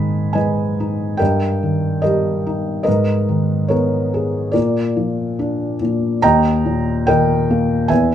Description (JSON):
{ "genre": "classical, lyrical solo piano", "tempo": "71 BPM", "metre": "4/4", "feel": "rubato", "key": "unclear", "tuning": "A4 = 440 Hz", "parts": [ { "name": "felt-muted upright piano", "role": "solo", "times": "0.0-8.1 s", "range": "D#2 to B5", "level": "-15 LUFS", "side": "equal", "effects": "none" } ], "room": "light reverb", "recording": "none", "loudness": "-15 LUFS", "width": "side -10 dB against mid", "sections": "0.0-8.1 A section", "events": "none", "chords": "0.0 G#m; 1.2 D#/G; 2.9 G#madd9; 4.5 A#; 6.2 D#" }